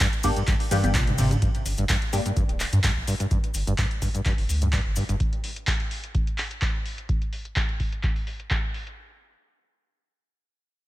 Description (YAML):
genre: acid house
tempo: 127 BPM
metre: 4/4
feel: swing 53% on 16ths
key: G minor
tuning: A4 = 441 Hz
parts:
  - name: overdriven acid bass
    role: riff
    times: 0.0-5.2 s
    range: G2 to D3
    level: -27 LUFS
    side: equal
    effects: distortion, ensemble chorus, sidechain pumping, digital delay
  - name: booming analog drum machine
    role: drums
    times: 0.0-9.0 s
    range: congas, handclaps, hi-hat, ride cymbal, toms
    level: -29 LUFS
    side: equal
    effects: low-pass filter on hats, low-pass filter on cymbals, low-pass filter on snare, low-pass filter on perc, low-pass filter on toms
  - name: electronic kick drum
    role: drums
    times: 0.0-8.6 s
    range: none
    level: -26 LUFS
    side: equal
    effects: none
  - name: maracas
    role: percussion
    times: 0.0-5.2 s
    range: none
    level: -37 LUFS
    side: left 4 dB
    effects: none
  - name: filtered dub chord stab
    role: stabs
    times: 0.2-2.2 s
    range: Bb3 to G4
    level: -30 LUFS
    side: left 1 dB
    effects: phaser, ensemble chorus, digital delay
  - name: round analog bass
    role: bass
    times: 0.8-5.2 s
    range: D1 to G2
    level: -26 LUFS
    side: equal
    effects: sidechain pumping
room: little or no reverb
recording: none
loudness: -22 LUFS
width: side -16 dB against mid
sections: 0.0-1.4 A section; 1.4-9.0 B section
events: drop 0.0-1.4; drum fill 0.7-1.4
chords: 0.0 Gm; 1.4 N.C.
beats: 0.00 0.47 0.95 | 1.42 1.89 2.37 2.84 | 3.31 3.78 4.25 4.73 | 5.20 5.67 6.14 6.62 | 7.09 7.56 8.03 8.51